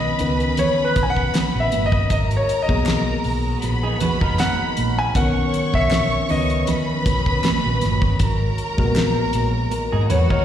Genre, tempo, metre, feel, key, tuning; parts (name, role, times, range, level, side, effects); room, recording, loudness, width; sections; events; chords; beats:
lush 1970s-style soul; 79 BPM; 4/4; swing 54% on 16ths; G# minor; A4 = 439 Hz
clear concert grand piano; melody; 0.0-10.4 s; B4 to G#5; -24 LUFS; left 2 dB; slapback echo
warm symphonic violin section; second line; 0.0-10.4 s; B3 to C#6; -25 LUFS; equal; slapback echo
tine electric piano; accompaniment; 0.0-10.4 s; D3 to B4; -25 LUFS; left 2 dB; overdrive, slapback echo
hollow soft pad; sustained chords; 0.0-10.4 s; D#3 to F#4; -32 LUFS; right 1 dB; chorus
hollow-body short-scale fingered electric bass; bass; 0.0-10.4 s; F#1 to G#2; -22 LUFS; equal
damped 70s drum kit; drums; 0.2-10.4 s; hi-hat, kick drum, snare drum; -23 LUFS; equal
congas; percussion; 0.6-10.3 s; -27 LUFS; right 8 dB
group handclap; percussion; 1.3-9.1 s; -36 LUFS; left 1 dB
electric guitar through a small old amp; riff; 3.8-5.1, 9.9-10.4 s; D#4 to B4; -28 LUFS; right 5 dB; slapback echo
light reverb; live gig heard through the venue's PA, recital hall reverb; -17 LUFS; side -10 dB against mid
0.0-10.4 A section
grand piano solo 0.0-10.4
0.0 Badd9; 2.1 G#m9; 5.2 Bmaj9; 8.2 G#m9
0.58 1.34 | 2.10 2.87 3.63 4.39 | 5.15 5.91 6.68 7.44 | 8.20 8.96 9.72